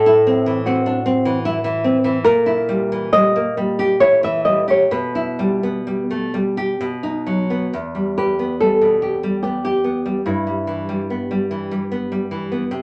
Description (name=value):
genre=romantic duo for nylon-string guitar and classical guitar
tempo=62-78 BPM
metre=3/4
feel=rubato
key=E minor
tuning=A4 = 439 Hz
part: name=flamenco guitar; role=melody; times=0.0-12.3 s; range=E4 to E5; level=-20 LUFS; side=equal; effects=none
part: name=nylon-string guitar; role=accompaniment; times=0.0-12.8 s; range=E2 to G4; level=-22 LUFS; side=equal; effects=none
room=moderate studio reverb, RT60 0.5 s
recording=nothing above 10.7 kHz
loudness=-19 LUFS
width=mono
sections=0.0-7.7 A section; 7.7-12.8 B section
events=none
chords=0.0 F#m7b5/A; 2.2 A#dim7(no3); 4.9 Em/B; 6.8 B; 7.7 Em; 10.2 Em/G